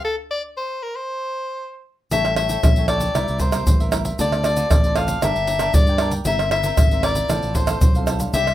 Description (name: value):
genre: samba and choro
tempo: 116 BPM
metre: 4/4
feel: straight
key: F major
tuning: A4 = 441 Hz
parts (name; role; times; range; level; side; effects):
- edgy soprano saxophone; melody; 0.0-8.5 s; A4 to F5; -22 LUFS; left 3 dB; none
- cavaquinho; accompaniment; 0.0-8.5 s; D4 to G5; -29 LUFS; right 7 dB; none
- nylon-string guitar; accompaniment; 2.1-8.5 s; G2 to Bb4; -33 LUFS; left 2 dB; none
- fingered electric bass; bass; 2.1-8.5 s; G1 to G2; -24 LUFS; equal; none
- tube shaker, surdo, pandeiro and tamborim; percussion; 2.1-8.5 s; none; -19 LUFS; right 1 dB; none
room: light reverb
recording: rough home demo mix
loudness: -17 LUFS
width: side -13 dB against mid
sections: 0.0-2.1 A section; 2.1-8.5 B section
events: stop 0.0-2.1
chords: 0.0 N.C.; 2.1 A7; 3.2 C7; 4.2 Dm7; 5.2 Gm; 6.3 C7/G; 7.3 Fmaj7/A